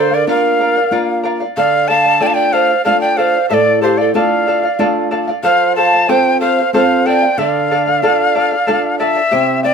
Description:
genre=andean folk, Andean ensemble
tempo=93 BPM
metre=3/4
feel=straight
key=D minor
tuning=A4 = 441 Hz
part: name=breathy bright quena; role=melody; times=0.0-9.7 s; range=C5 to A5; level=-14 LUFS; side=left 2 dB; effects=plate reverb
part: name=mellow hollow pan flute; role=second line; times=0.0-9.0 s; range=G4 to F5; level=-17 LUFS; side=right 6 dB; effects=none
part: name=charango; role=accompaniment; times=0.0-9.7 s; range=E4 to G5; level=-19 LUFS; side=left 1 dB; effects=none
part: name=nylon-string guitar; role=accompaniment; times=0.0-9.7 s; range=A2 to A4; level=-20 LUFS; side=equal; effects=none
room=moderate studio reverb, RT60 0.6 s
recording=none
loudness=-11 LUFS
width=side -6 dB against mid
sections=0.0-9.3 A section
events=none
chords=0.0 Bb; 1.6 Dm; 5.4 F; 7.4 Dm

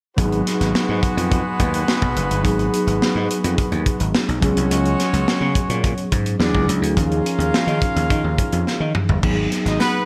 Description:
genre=polished 1980s jazz-funk pop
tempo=106 BPM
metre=4/4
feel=straight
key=G# dorian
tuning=A4 = 438 Hz
part: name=clear horn section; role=second line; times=0.2-10.0 s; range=G#3 to E#5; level=-27 LUFS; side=equal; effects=none
part: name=mellow tine electric piano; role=accompaniment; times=0.2-10.1 s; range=E#3 to G#4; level=-25 LUFS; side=equal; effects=subtle chorus
part: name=gritty slap bass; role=bass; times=0.2-9.8 s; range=F#1 to D#3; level=-24 LUFS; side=equal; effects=overdrive
part: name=tight funk drum kit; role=drums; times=0.2-9.9 s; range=crash cymbal, hi-hat, kick drum, snare drum, toms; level=-24 LUFS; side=equal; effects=gated reverb
room=light reverb, small room ambience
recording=none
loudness=-19 LUFS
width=mono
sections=0.2-9.2 A section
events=drum fill 8.7-9.2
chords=0.2 G#m7; 4.4 C#7sus4; 6.4 E9; 7.0 D#9sus4; 9.2 G#m7

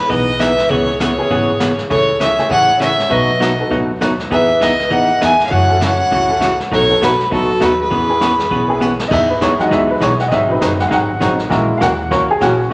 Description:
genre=country, western swing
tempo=200 BPM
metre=4/4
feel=swing 60% on 8ths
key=E major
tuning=A4 = 440 Hz
part: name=bright fiddle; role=melody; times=0.0-8.8 s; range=A4 to G#5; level=-18 LUFS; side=equal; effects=none
part: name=mellow hollow tenor recorder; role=second line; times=0.0-8.8 s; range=F#4 to E5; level=-23 LUFS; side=equal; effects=none
part: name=archtop guitar, miked and amplified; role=accompaniment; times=0.1-12.7 s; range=B2 to A#4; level=-20 LUFS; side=equal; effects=none
part: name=upright bass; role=bass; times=0.1-12.7 s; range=F#1 to A2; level=-26 LUFS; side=equal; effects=none
part: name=vintage brush drum kit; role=drums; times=0.1-12.7 s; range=brushed snare drum, crash cymbal, hi-hat, kick drum, snare drum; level=-28 LUFS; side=equal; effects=none
part: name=bright upright piano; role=accompaniment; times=1.2-12.7 s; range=F#3 to F#5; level=-20 LUFS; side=equal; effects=none
room=wet large studio reverb, RT60 1.4 s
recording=none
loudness=-15 LUFS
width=mono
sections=0.0-9.1 A section; 9.1-12.7 B section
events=drum fill 8.8; upright piano solo 9.1-12.7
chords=0.0 Emaj7; 0.7 C#m7; 1.9 Amaj7/C#; 3.1 B7; 4.3 Emaj7; 5.5 F#m7; 6.7 B7; 7.9 E6; 9.1 Emaj7; 10.3 G#7; 11.5 F#7/A#

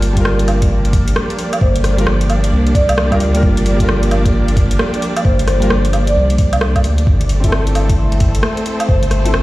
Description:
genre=future garage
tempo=132 BPM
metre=4/4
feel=swing 63% on 16ths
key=G dorian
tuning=A4 = 440 Hz
part: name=clear upright piano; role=accompaniment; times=0.0-9.3 s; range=G3 to Bb4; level=-22 LUFS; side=left 1 dB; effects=sidechain pumping, tape echo
part: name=rich symphonic string section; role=sustained chords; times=0.0-9.4 s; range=E3 to A5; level=-21 LUFS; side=right 1 dB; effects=sidechain pumping
part: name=soft dub sub bass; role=bass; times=0.0-9.4 s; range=G1 to D2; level=-15 LUFS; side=equal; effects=sidechain pumping
part: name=garage drum kit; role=drums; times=0.0-9.4 s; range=hi-hat, rim click, woodblock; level=-21 LUFS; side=right 1 dB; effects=studio reverb
part: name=electronic kick drum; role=drums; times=0.2-9.0 s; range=none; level=-15 LUFS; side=equal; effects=overdrive, studio reverb
part: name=marimba with soft mallets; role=melody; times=1.6-9.1 s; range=C5 to D5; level=-23 LUFS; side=equal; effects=dub echo
room=little or no reverb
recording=played on a big sound system in a bare room, stone room reverb, vinyl crackle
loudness=-12 LUFS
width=side -17 dB against mid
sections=0.0-9.4 A section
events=none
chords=0.0 Gm7; 7.1 G5

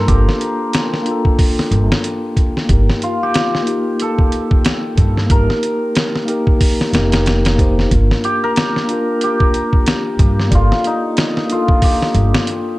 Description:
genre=trip hop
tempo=92 BPM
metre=4/4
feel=swing 58% on 16ths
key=G minor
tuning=A4 = 441 Hz
part: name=cimbalom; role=melody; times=0.0-12.8 s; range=Eb4 to C5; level=-21 LUFS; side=left 1 dB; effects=tape echo
part: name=mellow tine electric piano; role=accompaniment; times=0.0-12.8 s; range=Bb3 to D5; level=-20 LUFS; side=equal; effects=harmonic tremolo
part: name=upright bass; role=bass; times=0.0-12.3 s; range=F1 to G2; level=-15 LUFS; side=equal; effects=none
part: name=trip hop sampler-style drum kit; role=drums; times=0.1-12.7 s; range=hi-hat, kick drum, snare drum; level=-15 LUFS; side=equal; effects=vintage 12-bit sampler grit
room=light reverb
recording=dark, warm production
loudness=-13 LUFS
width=side -19 dB against mid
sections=0.0-12.8 A section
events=none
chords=0.0 Gm7; 2.7 Eb/G; 7.9 Gm7

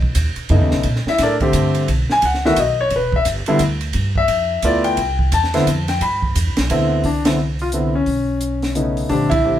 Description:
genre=jazz piano trio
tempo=174 BPM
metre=3/4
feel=swing 62% on 8ths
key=C major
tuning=A4 = 440 Hz
part: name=upright bass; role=bass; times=0.0-9.6 s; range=E1 to Bb2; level=-21 LUFS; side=right 1 dB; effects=none
part: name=compact cocktail drum kit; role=drums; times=0.0-9.4 s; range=hi-hat, kick drum, ride cymbal, snare drum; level=-24 LUFS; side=right 2 dB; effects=none
part: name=warm concert grand piano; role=melody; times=0.5-9.6 s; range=C#3 to B5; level=-17 LUFS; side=left 1 dB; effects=none
room=moderate studio reverb, RT60 0.7 s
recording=band playing live in one room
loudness=-15 LUFS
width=side -11 dB against mid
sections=0.0-7.0 A section; 7.0-9.6 B section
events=grand piano solo 0.0-7.0; band accent 7.2, 9.3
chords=0.0 B9; 0.9 Bbmaj13; 1.9 B; 2.9 Em7; 3.9 G13; 5.0 Cmaj9; 8.1 B9

